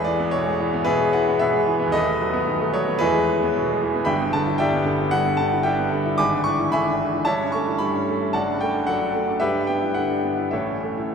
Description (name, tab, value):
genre	classical, romantic character piece for solo piano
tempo	112 BPM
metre	4/4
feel	rubato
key	unclear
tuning	A4 = 442 Hz
part	bright grand piano	solo	0.0-11.1 s	D#1 to D6	-19 LUFS	equal	none
room	wet cathedral reverb, RT60 4.8 s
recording	minimal, uncompressed stereo recording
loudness	-19 LUFS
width	side -6 dB against mid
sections	0.0-11.1 A section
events	none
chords	0.0 E; 1.9 B7/D#; 3.0 E; 4.1 Em7/G; 6.2 E7/G#; 7.3 A7/G; 8.3 D/F#; 9.4 Em7/G; 10.5 A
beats	0.33 0.87 1.41 | 1.94 2.49 3.03 3.56 | 4.09 4.62 5.14 5.66 | 6.19 6.72 7.26 7.81 | 8.34 8.88 9.40 9.95 | 10.52 11.11